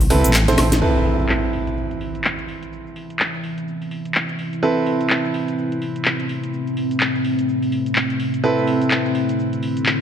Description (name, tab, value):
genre	bass house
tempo	126 BPM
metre	4/4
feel	swing 60% on 16ths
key	A minor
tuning	A4 = 440 Hz
part	wobble bass	bass	0.0-0.8 s	A1 to C2	-17 LUFS	equal	chorus, overdrive
part	house drum kit	drums	0.0-10.0 s	handclaps, hi-hat, shaker, snare drum, woodblock	-22 LUFS	left 1 dB	overdrive, low-pass filter on hats, low-pass filter on perc, low-pass filter on snare, low-pass filter on room
part	clear concert grand piano	stabs	0.1-10.0 s	C4 to C5	-22 LUFS	right 3 dB	digital delay
part	dusty soul sampler-style drum kit	drums	0.1-0.8 s	hi-hat, snare drum	-32 LUFS	right 1 dB	none
part	deep dark ambient pad	sustained chords	2.9-10.0 s	A3 to B4	-22 LUFS	left 1 dB	chorus, built-in reverb
part	impact	sound effects	0.8-2.7 s	none	-23 LUFS	equal	none
room	moderate lush hall reverb, RT60 2.0 s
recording	none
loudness	-18 LUFS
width	side -8 dB against mid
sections	0.8-10.0 A section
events	drum fill 0.5-0.8; impact 0.8-2.7; filter sweep on ambient pad 0.8-10.0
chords	0.0 Amadd9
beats	0.34 | 0.82 1.29 1.77 2.25 | 2.72 3.20 3.67 4.15 | 4.63 5.10 5.58 6.05 | 6.53 7.01 7.48 7.96 | 8.44 8.91 9.39 9.86